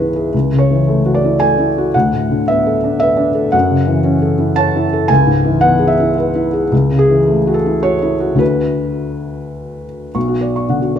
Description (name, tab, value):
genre	neoclassical minimalist piano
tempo	101-117 BPM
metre	3/4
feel	rubato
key	B dorian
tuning	A4 = 437 Hz
part	felt-muted upright piano	solo	0.0-11.0 s	B1 to C#6	-12 LUFS	equal	none
room	moderate recital hall reverb, RT60 1.6 s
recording	minimal, uncompressed stereo recording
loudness	-12 LUFS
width	side -8 dB against mid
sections	0.0-10.2 A section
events	none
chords	0.3 F#m7/C#; 1.9 Bm7/D; 3.5 F#m7; 5.1 C#m7; 6.7 F#m7/C#; 8.4 Bm7/D; 10.2 Bmadd9